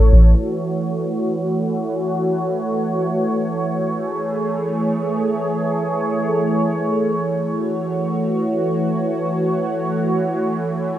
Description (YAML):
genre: hip hop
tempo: free time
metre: none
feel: none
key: F# minor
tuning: A4 = 444 Hz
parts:
  - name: warm analog pad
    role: sustained chords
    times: 0.0-11.0 s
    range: E3 to C#5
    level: -19 LUFS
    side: right 1 dB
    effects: chorus, low-pass filter
room: light reverb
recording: rough home demo mix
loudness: -18 LUFS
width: side -12 dB against mid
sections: 0.4-11.0 A section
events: filter sweep on analog synth pad 0.4-11.0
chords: 0.4 F#m7; 4.0 Amaj7; 7.6 F#m7